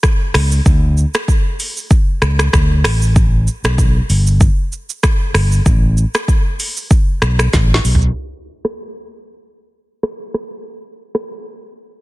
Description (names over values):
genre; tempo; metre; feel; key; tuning
afrobeats; 96 BPM; 4/4; swing 55% on 16ths; unclear; A4 = 439 Hz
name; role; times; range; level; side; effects
afro-pop drum kit; drums; 0.0-11.3 s; finger snaps, hi-hat, kick drum, rim click, shaker, snare drum, toms; -14 LUFS; equal; overdrive, vintage 12-bit sampler grit, soft clipping on snare
fingered electric bass; bass; 0.3-8.1 s; G1 to D2; -13 LUFS; equal; none
room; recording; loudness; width
little or no reverb; dense, heavily limited modern master, low-pass filter; -12 LUFS; side -19 dB against mid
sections
0.0-8.2 A section; 8.2-12.0 B section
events
drum fill 7.5-8.2; filter sweep 8.2-12.0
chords
none